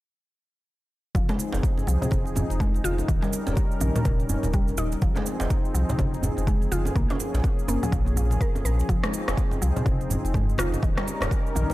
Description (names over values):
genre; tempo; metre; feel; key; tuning
afro house; 124 BPM; 4/4; swing 60% on 16ths; F minor; A4 = 441 Hz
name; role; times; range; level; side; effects
warm analog pad; sustained chords; 1.1-11.7 s; F3 to Bb4; -32 LUFS; left 1 dB; chorus, sidechain pumping
mallet-like synth pluck; arpeggios; 1.1-11.7 s; Bb2 to Bb4; -31 LUFS; equal; chorus, sidechain pumping, dub echo
warm sub bass; bass; 1.1-11.7 s; Eb1 to C2; -26 LUFS; equal; sidechain pumping
electronic kick drum; drums; 1.1-11.4 s; none; -25 LUFS; equal; none
deep house drum kit; drums; 1.2-11.7 s; rim click, shaker, toms; -33 LUFS; right 1 dB; none
congas; percussion; 1.2-11.7 s; none; -33 LUFS; left 1 dB; none
djembe; percussion; 1.3-11.7 s; none; -34 LUFS; right 1 dB; none
room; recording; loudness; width
digital ambience; none; -22 LUFS; side -17 dB against mid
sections
1.2-11.7 A section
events
none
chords
1.2 Fm7; 3.1 Eb7; 5.0 Fm7; 7.0 Bbm7; 8.9 Fm7; 10.8 Eb7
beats
| 1.15 1.64 2.12 2.60 | 3.09 3.57 4.05 4.54 | 5.02 5.51 5.99 6.47 | 6.96 7.44 7.93 8.41 | 8.89 9.38 9.86 10.35 | 10.83 11.31